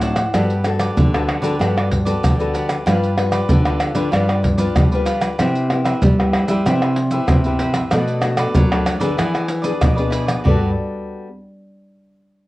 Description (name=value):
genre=samba and choro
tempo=95 BPM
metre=4/4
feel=straight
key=G major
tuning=A4 = 440 Hz
part: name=cavaquinho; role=accompaniment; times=0.0-10.7 s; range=D4 to F#5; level=-26 LUFS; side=right 2 dB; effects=none
part: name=nylon-string guitar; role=accompaniment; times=0.0-11.3 s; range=F#2 to B4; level=-24 LUFS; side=left 4 dB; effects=none
part: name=nylon-string guitar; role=bass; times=0.0-10.7 s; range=G2 to G3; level=-20 LUFS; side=equal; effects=none
part: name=maracas, pandeiro, tamborim and surdo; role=percussion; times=0.0-10.6 s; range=none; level=-18 LUFS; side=right 1 dB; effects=none
room=moderate studio reverb, RT60 0.6 s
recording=worn, warbling old tape, cassette tape, warbly pitch drift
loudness=-15 LUFS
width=side -18 dB against mid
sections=0.3-10.4 A section; 10.4-12.5 B section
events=none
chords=0.3 Gmaj9; 2.9 G7; 5.4 Cmaj7; 7.9 Bm7; 9.2 E7; 10.4 Gmaj9